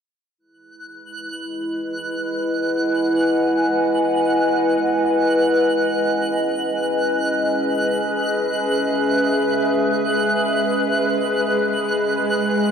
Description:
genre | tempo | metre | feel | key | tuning
ambient | free time | none | none | E major | A4 = 440 Hz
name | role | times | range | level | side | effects
warbly tape-like pad | sustained chords | 1.3-12.7 s | G#3 to G#5 | -19 LUFS | equal | chorus, built-in reverb
bowed-like drone | drone | 1.1-12.7 s | G#3 to B4 | -27 LUFS | equal | built-in reverb
twinkling granular texture | texture | 0.8-12.7 s | F#6 | -25 LUFS | right 1 dB | built-in reverb
room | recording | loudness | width
wet cathedral reverb, RT60 6.3 s | in a vast, echoing space, cassette tape | -17 LUFS | side -7 dB against mid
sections
0.4-12.7 A section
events
none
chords
0.4 Emaj7; 5.9 C#m7; 11.5 G#7(no3)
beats
free time

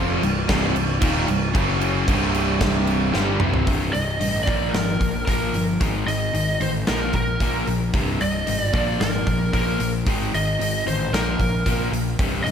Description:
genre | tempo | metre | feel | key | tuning
hard rock | 113 BPM | 4/4 | straight | C minor | A4 = 440 Hz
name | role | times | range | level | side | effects
dark analog pad | sustained chords | 0.0-3.7 s | F#3 to D5 | -35 LUFS | equal | none
cranked stack guitar | riff | 0.0-12.5 s | C2 to Bb3 | -29 LUFS | right 10 dB | overdrive, spring reverb, slapback echo
distorted electric guitar | riff | 0.0-3.7 s | C2 to G3 | -27 LUFS | equal | overdrive
overdriven electric guitar | riff | 0.0-12.5 s | C2 to Bb3 | -26 LUFS | left 7 dB | slapback echo
fuzz picked electric bass | bass | 0.0-12.5 s | C1 to Bb1 | -26 LUFS | equal | overdrive
big rock drum kit | drums | 0.2-12.5 s | crash cymbal, hi-hat, kick drum, snare drum, toms | -25 LUFS | right 1 dB | none
lead guitar through a small cranked amp | melody | 3.9-12.5 s | Bb4 to Eb5 | -26 LUFS | right 1 dB | overdrive, slapback echo, analog delay
room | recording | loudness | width
moderate scoring stage reverb, RT60 1.8 s | big arena sound | -19 LUFS | side -8 dB against mid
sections
0.0-3.7 A section; 3.7-12.5 B section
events
drum fill 3.1-3.7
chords
0.0 Cm; 1.6 F#5; 2.1 C5; 3.7 Cm; 4.5 Bb5; 5.8 Ab5; 6.9 Bb5; 7.9 Cm; 8.7 Bb5; 10.1 Ab5; 11.1 Bb5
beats
0.49 1.02 | 1.55 2.08 2.61 3.15 | 3.68 4.21 4.74 5.27 | 5.81 6.34 6.87 7.40 | 7.94 8.47 9.00 9.53 | 10.06 10.59 11.13 11.66 | 12.19

